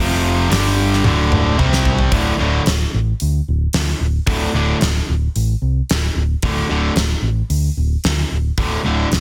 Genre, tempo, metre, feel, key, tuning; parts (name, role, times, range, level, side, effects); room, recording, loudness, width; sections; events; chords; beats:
hard rock; 111 BPM; 4/4; straight; D minor; A4 = 440 Hz
cranked stack guitar; riff; 0.0-9.1 s; D2 to C4; -23 LUFS; equal; overdrive
heavy high-gain guitar; riff; 0.0-9.1 s; D2 to C4; -23 LUFS; equal; distortion
picked electric bass; bass; 0.0-9.2 s; D1 to D2; -21 LUFS; equal
gated 80s drum kit; drums; 0.5-9.2 s; hi-hat, kick drum, snare drum, toms; -22 LUFS; equal
small room ambience; dense, heavily limited modern master; -17 LUFS; mono
0.0-2.1 A section; 2.1-9.2 B section
drum fill 1.0-2.1
0.0 F5; 0.5 G5; 1.0 D5; 1.6 C5; 2.1 D5
0.51 1.04 1.58 | 2.12 2.66 3.20 3.73 | 4.27 4.81 5.35 5.89 | 6.43 6.96 7.50 8.04 | 8.58 9.12